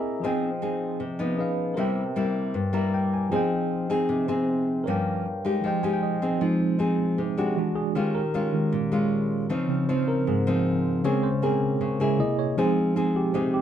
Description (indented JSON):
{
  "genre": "bossa nova",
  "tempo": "156 BPM",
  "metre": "4/4",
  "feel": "straight",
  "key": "F minor",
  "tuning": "A4 = 438 Hz",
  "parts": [
    { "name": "nylon-string guitar", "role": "accompaniment", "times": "0.0-13.6 s", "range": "G2 to Ab4", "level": "-25 LUFS", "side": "left 2 dB", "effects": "none" },
    { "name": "tine electric piano", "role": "accompaniment", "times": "0.0-13.6 s", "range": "C3 to Bb5", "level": "-26 LUFS", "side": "right 2 dB", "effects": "medium stereo tremolo" }
  ],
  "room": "moderate studio reverb, RT60 0.6 s",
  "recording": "dark, warm production",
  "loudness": "-23 LUFS",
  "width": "side -10 dB against mid",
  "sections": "0.0-6.4 A section; 6.4-13.6 B section",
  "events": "tine electric piano fill 0.0, 2.6-3.3, 5.6-6.4; tine electric piano solo 6.4-13.6",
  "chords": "0.2 Fm7; 1.4 Db9; 1.8 C7; 3.3 Fm7; 4.9 Gm7b5; 5.6 Fm9; 6.4 Fm7; 7.6 E9; 8.0 Eb9sus4; 9.5 Dbmaj9; 11.0 Bbm9/Db; 12.2 C7alt; 12.6 Fm7"
}